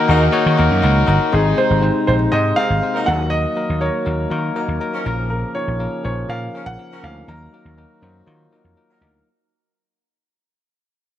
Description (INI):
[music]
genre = pop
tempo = 121 BPM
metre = 4/4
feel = straight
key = unclear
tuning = A4 = 440 Hz
[part]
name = clear grand piano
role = melody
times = 0.0-8.7 s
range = Ab4 to Bb5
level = -22 LUFS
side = right 1 dB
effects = tape echo
[part]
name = bell-like tine electric piano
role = accompaniment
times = 0.0-9.3 s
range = F3 to Bb5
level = -21 LUFS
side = left 4 dB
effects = none
[part]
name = overdriven electric guitar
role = accompaniment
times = 0.0-1.8 s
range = Eb3 to Eb4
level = -28 LUFS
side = left 1 dB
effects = wide subtle chorus
[part]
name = warm woodwind section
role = sustained chords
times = 0.0-9.2 s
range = C3 to Gb4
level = -26 LUFS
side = right 1 dB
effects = none
[part]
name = dark horn section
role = stabs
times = 0.1-9.2 s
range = Eb3 to Bb4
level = -27 LUFS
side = equal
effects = none
[part]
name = vintage slap bass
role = bass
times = 0.1-9.2 s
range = G1 to Eb3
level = -19 LUFS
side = equal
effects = none
[sound]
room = moderate scoring stage reverb, RT60 2.2 s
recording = none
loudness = -15 LUFS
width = side -11 dB against mid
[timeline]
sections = 0.0-1.3 A section; 1.3-9.3 B section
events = band accent 0.0-1.3; fade-out 1.3-9.3; tine electric piano fill 4.6-5.3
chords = 0.0 Ebm; 1.3 Ab; 3.1 Ebm; 5.0 Bbm; 7.3 Ebm